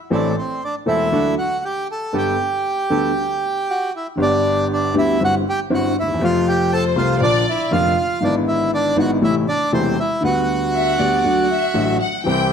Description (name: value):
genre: tango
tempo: 119 BPM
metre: 4/4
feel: rubato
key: G major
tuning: A4 = 440 Hz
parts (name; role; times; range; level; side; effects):
- bandoneon; melody; 0.1-12.0 s; C4 to A5; -20 LUFS; right 2 dB; none
- dark baby grand piano; accompaniment; 0.1-12.5 s; E1 to B4; -19 LUFS; left 1 dB; none
- bandoneon; stabs; 0.1-3.1, 12.3-12.5 s; B3 to A4; -28 LUFS; right 6 dB; none
- warm studio violin section; second line; 6.7-7.6, 10.7-12.5 s; C5 to G5; -22 LUFS; left 4 dB; none
room: moderate recital hall reverb, RT60 1.3 s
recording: none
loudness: -16 LUFS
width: side -7 dB against mid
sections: 0.0-4.2 A section; 4.2-12.5 B section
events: none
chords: 0.1 Am; 1.1 D; 2.1 Gadd9; 4.2 G; 5.2 Cadd9/G; 6.2 F; 7.2 Bb; 8.2 E7/G#; 9.2 Am; 10.2 G/D; 11.2 D